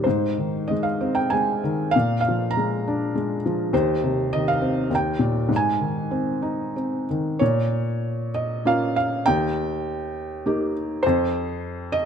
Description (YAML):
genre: classical, lyrical solo piano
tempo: 89-103 BPM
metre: 3/4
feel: rubato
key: Ab major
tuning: A4 = 440 Hz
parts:
  - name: felt-muted upright piano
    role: solo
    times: 0.0-12.1 s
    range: Eb2 to Bb5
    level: -21 LUFS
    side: equal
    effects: none
room: light reverb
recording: close, detailed microphones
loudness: -21 LUFS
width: side -7 dB against mid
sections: 0.0-7.4 A section; 7.4-12.1 B section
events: none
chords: 0.1 Ab; 1.9 Bb7; 3.7 Cmadd11/Eb; 4.9 Eb; 5.5 Ab; 7.4 Bbm; 9.3 Eb; 11.0 F5